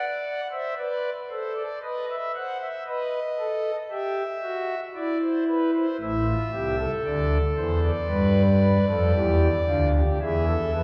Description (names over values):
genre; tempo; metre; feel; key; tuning
classical, baroque-style 3-part fugue for pipe organ; 57 BPM; 4/4; straight; A minor; A4 = 441 Hz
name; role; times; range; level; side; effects
pipe organ, foundations; solo; 0.0-10.8 s; A1 to F#5; -25 LUFS; equal; none
room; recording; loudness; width
wet church reverb, RT60 3.1 s; small room ambience; -25 LUFS; mono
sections
0.0-10.8 A section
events
none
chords
0.0 D; 1.8 B7; 3.9 Em; 6.0 Am; 8.1 G; 10.2 E